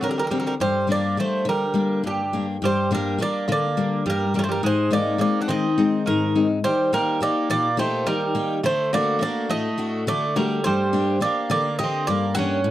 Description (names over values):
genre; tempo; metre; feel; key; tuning
greek folk, Greek bouzouki band; 209 BPM (eighths); 7/8; straight; G harmonic minor; A4 = 442 Hz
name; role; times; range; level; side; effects
Greek bouzouki; melody; 0.0-12.7 s; G4 to F#5; -24 LUFS; right 2 dB; none
Greek bouzouki; second line; 0.0-12.7 s; D3 to D4; -27 LUFS; right 4 dB; none
picked steel-string acoustic guitar; accompaniment; 0.0-12.7 s; G2 to G4; -23 LUFS; left 4 dB; none
room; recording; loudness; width
light reverb; dry, close 1970s-style studio recording; -20 LUFS; side -13 dB against mid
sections
0.0-2.6 A section; 2.6-12.7 A section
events
none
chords
0.0 D7; 0.6 Gm; 4.6 Ab; 6.6 Eb; 8.6 D; 10.6 Gm